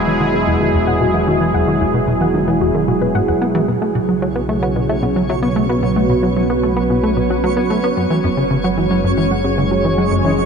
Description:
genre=ambient, sequencer-driven space music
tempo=112 BPM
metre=4/4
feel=straight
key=unclear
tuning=A4 = 439 Hz
part: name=sweeping resonant pad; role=sustained chords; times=0.0-10.5 s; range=B2 to C#5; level=-17 LUFS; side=right 2 dB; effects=chorus
part: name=soft round pluck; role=arpeggios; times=0.0-10.5 s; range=E4 to F#5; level=-26 LUFS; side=left 3 dB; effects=chorus, auto-pan, tape echo
part: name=fat analog bass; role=bass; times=0.0-10.5 s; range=E1 to B1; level=-25 LUFS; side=equal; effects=none
part: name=plucky analog bass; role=riff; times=0.1-10.4 s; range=E2 to B3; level=-19 LUFS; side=equal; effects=tape echo
part: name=twinkling granular texture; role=texture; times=4.4-10.5 s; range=C#4 to C#5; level=-23 LUFS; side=equal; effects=built-in reverb
room=moderate huge ambient reverb, RT60 8.9 s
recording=none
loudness=-14 LUFS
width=side -6 dB against mid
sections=0.0-3.7 A section; 3.7-10.5 B section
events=filter sweep on analog synth bass 0.0-3.7; filter sweep on synth arpeggio sound 0.0-3.7; fade-in on synth arpeggio sound 3.7-10.5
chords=0.0 Eadd9; 3.7 Bsus2; 8.0 F#sus2

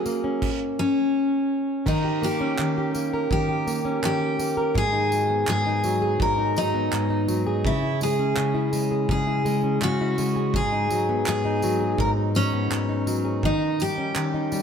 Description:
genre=acoustic pop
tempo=83 BPM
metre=4/4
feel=straight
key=G# minor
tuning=A4 = 438 Hz
part: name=picked steel-string acoustic guitar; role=melody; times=0.0-14.6 s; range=C#4 to A#4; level=-25 LUFS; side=equal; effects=none
part: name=fingerpicked plugged-in steel-string acoustic guitar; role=accompaniment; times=0.0-14.6 s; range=G#2 to A#4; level=-24 LUFS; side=left 1 dB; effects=none
part: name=modern studio drum kit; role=drums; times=0.1-14.6 s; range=crash cymbal, handclaps, kick drum, tambourine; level=-31 LUFS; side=right 2 dB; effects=none
room=moderate plate reverb, RT60 2.5 s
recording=heard from further back in the room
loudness=-21 LUFS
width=side -7 dB against mid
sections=0.0-1.9 A section; 1.9-14.6 B section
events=none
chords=0.0 F#add9; 1.9 D#7; 4.8 G#m7; 7.6 C#m; 10.5 G#m7; 13.4 D#7

